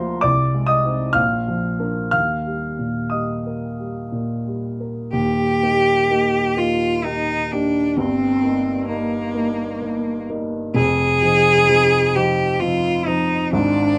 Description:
classical, romantic duo for cello and grand piano; 59-67 BPM; 3/4; rubato; Eb major; A4 = 440 Hz
warm grand piano; accompaniment; 0.0-14.0 s; Eb1 to F6; -23 LUFS; equal
rich cello; melody; 5.1-14.0 s; Bb3 to Ab4; -20 LUFS; equal
moderate studio reverb, RT60 0.5 s; -20 LUFS; mono
0.0-5.1 A section; 5.1-14.0 B section
0.2 Ab/C; 1.2 Bb; 2.1 Eb; 8.0 Eb/G; 10.8 Fm7

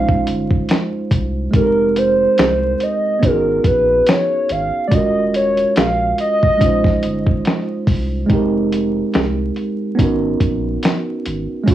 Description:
lo-fi hip hop; 71 BPM; 4/4; swing 57% on 16ths; A4 = 440 Hz
warbly nostalgic lead; melody; 0.0-7.4 s; Bb4 to F5; -16 LUFS; equal; chorus, tape echo
mellow tine electric piano; accompaniment; 0.0-11.7 s; Ab3 to C5; -19 LUFS; right 3 dB; medium stereo tremolo, cassette tape
warm sub bass; bass; 0.0-11.7 s; Eb1 to C2; -25 LUFS; equal
dusty soul sampler-style drum kit; drums; 0.1-11.7 s; hi-hat, kick drum, snare drum; -17 LUFS; equal; overdrive, cassette tape
moderate studio reverb, RT60 0.6 s; home recording on cassette, vinyl crackle, small room ambience; -14 LUFS; side -12 dB against mid
0.0-11.7 A section
0.0 Bbm11; 1.5 Fm11; 3.2 Abm11; 4.9 Ebm11; 6.6 Bbm11; 8.3 Fm11; 10.0 Abm11

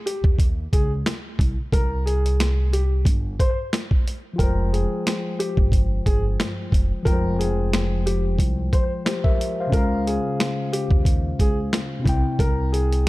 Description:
hip hop, boom-bap hip-hop; 90 BPM; 4/4; swing 57% on 16ths; F harmonic minor; A4 = 440 Hz
dark upright piano; melody; 0.0-13.1 s; G4 to C5; -28 LUFS; left 1 dB; slapback echo
boom bap sampler-style drum kit; drums; 0.1-13.1 s; hi-hat, kick drum, snare drum; -21 LUFS; equal
upright bass; bass; 0.2-13.1 s; F1 to Eb2; -23 LUFS; equal
mellow tine electric piano; accompaniment; 4.3-13.1 s; C3 to G5; -26 LUFS; left 2 dB
little or no reverb; dark, warm production; -19 LUFS; side -19 dB against mid
0.0-13.1 A section
break 0.0-4.4
0.0 Db5; 1.4 C5; 4.4 Fmadd9; 9.7 Db; 12.1 C

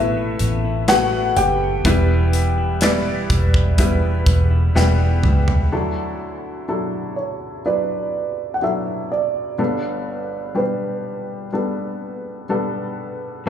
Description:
pop ballad; 62 BPM; 4/4; straight; D major; A4 = 442 Hz
dark baby grand piano; melody; 0.0-11.5 s; E4 to G5; -22 LUFS; equal; slapback echo, ping-pong delay
clear upright piano; accompaniment; 0.0-13.5 s; G1 to D5; -23 LUFS; left 2 dB; slapback echo
clean electric guitar; arpeggios; 0.0-6.3, 13.5 s; E2 to E4; -28 LUFS; right 1 dB; slapback echo, ping-pong delay
vintage muted fingered electric bass; bass; 0.0-5.7 s; E1 to C#2; -18 LUFS; equal
modern studio drum kit; drums; 0.4-5.7 s; hi-hat, kick drum, snare drum, toms; -21 LUFS; equal
small room ambience; live gig heard through the venue's PA, club reverb; -17 LUFS; side -9 dB against mid
0.0-5.7 A section; 5.7-13.5 B section
drum fill 4.8-5.7
0.0 Asus2; 1.8 Em; 5.7 Dadd9; 9.6 Gadd9

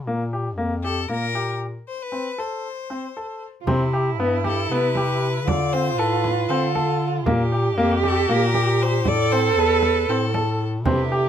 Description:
contemporary instrumental, chamber music in an uneven meter; 234 BPM (eighths); 7/8; straight; A4 = 440 Hz
mellow bass clarinet; bass; 0.0-11.3 s; E2 to D3; -24 LUFS; left 2 dB
clear grand piano; arpeggios; 0.1-11.3 s; Bb3 to A4; -24 LUFS; left 2 dB
clear violin; melody; 0.8-10.7 s; A4 to D5; -27 LUFS; left 6 dB
dark cello; second line; 3.6-11.3 s; E4 to A4; -24 LUFS; right 8 dB
frame drum; percussion; 3.7-11.1 s; -27 LUFS; right 3 dB
pedal harmonium; sustained chords; 10.8-11.3 s; D3 to E4; -29 LUFS; right 2 dB
light reverb; close, detailed microphones; -19 LUFS; side -9 dB against mid
0.0-3.7 A section; 3.7-11.3 A section
break 1.9-3.7
0.1 Bb5; 1.9 Amadd9/C; 3.7 Cmaj7; 5.5 Dm7; 7.3 Bb5; 9.1 Amadd9

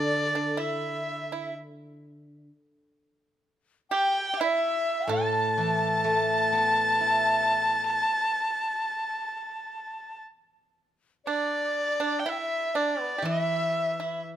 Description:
chinese traditional, Chinese chamber ensemble; 58-64 BPM; 4/4; rubato; A shang mode; A4 = 441 Hz
rich erhu; melody; 0.0-14.2 s; D5 to A5; -27 LUFS; right 1 dB
mellow hollow large dizi; second line; 0.0-14.2 s; D5 to A5; -32 LUFS; left 6 dB
pipa; second line; 0.0-14.2 s; D4 to A4; -31 LUFS; right 6 dB
steel-string zither; accompaniment; 0.0-14.4 s; A2 to E4; -31 LUFS; equal
moderate recital hall reverb, RT60 1.4 s; close, detailed microphones; -24 LUFS; side -11 dB against mid
0.0-11.2 A section; 11.2-14.4 B section

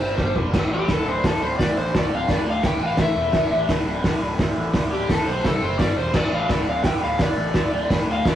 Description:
garage rock duo or trio; 171 BPM; 4/4; straight; D minor; A4 = 440 Hz
overdriven slide guitar; melody; 0.0-8.4 s; G4 to G5; -24 LUFS; left 1 dB
biting overdriven guitar; riff; 0.0-8.4 s; D2 to C4; -27 LUFS; equal; phaser
fuzz picked electric bass; bass; 0.0-8.4 s; D1 to D2; -28 LUFS; equal; overdrive
cloth-damped thuddy drum kit; drums; 0.2-8.3 s; crash cymbal, hi-hat, kick drum, snare drum, toms; -22 LUFS; equal
moderate stone room reverb, RT60 1.2 s; rough rehearsal-room recording; -19 LUFS; side -11 dB against mid
0.0-8.4 A section
electric slide guitar solo 0.0-8.4; drum fill 0.2-0.5
0.2 G5; 0.5 D5; 3.0 A5; 3.3 D5; 5.4 C5; 5.8 G5; 6.1 D5

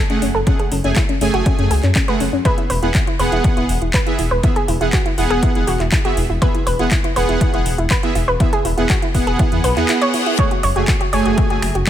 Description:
progressive house; 121 BPM; 4/4; straight; A4 = 439 Hz
analog pluck; arpeggios; 0.0-11.9 s; C#4 to C#5; -21 LUFS; equal; chorus, sidechain pumping, ping-pong delay
soft supersaw; stabs; 0.1-11.6 s; A3 to G#5; -21 LUFS; right 3 dB; sidechain pumping, ping-pong delay
house drum kit; drums; 0.1-11.9 s; finger snaps, handclaps, hi-hat; -25 LUFS; left 1 dB; overdrive
dark detuned saw bass; bass; 0.2-11.8 s; E1 to F#2; -20 LUFS; equal; sidechain pumping
electronic kick drum; drums; 0.5-11.9 s; -18 LUFS; equal; overdrive
reverse cymbal; sound effects; 9.6-10.4 s; -27 LUFS; left 7 dB
digital ambience; -14 LUFS; side -11 dB against mid
0.0-11.9 A section
filter sweep on synth pluck 0.0-11.9; reverse cymbal 9.6-10.4
0.0 F#madd9; 2.5 E; 10.4 F#madd9

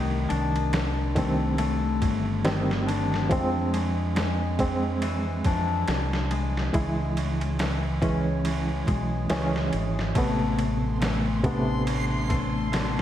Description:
trip hop; 70 BPM; 4/4; swing 59% on 16ths; A4 = 439 Hz
bright reed electric piano; accompaniment; 0.0-13.0 s; C3 to E4; -28 LUFS; right 1 dB; fast tremolo, tape echo
Celtic harp; arpeggios; 0.0-13.0 s; Eb3 to D4; -30 LUFS; left 5 dB; ping-pong delay
deep dub fingered electric bass; bass; 0.0-13.0 s; G1 to F2; -28 LUFS; equal
boom bap sampler-style drum kit; drums; 0.3-13.0 s; kick drum, ride cymbal, snare drum; -30 LUFS; right 1 dB
backwards swelling texture; texture; 11.0-13.0 s; C6; -35 LUFS; equal; built-in reverb
wet church reverb, RT60 3.1 s; dreamy mix soaked in reverb, vinyl crackle; -23 LUFS; side -11 dB against mid
0.0-13.0 A section
0.0 Cm; 3.3 Fm; 6.7 C#m; 10.2 Amadd9

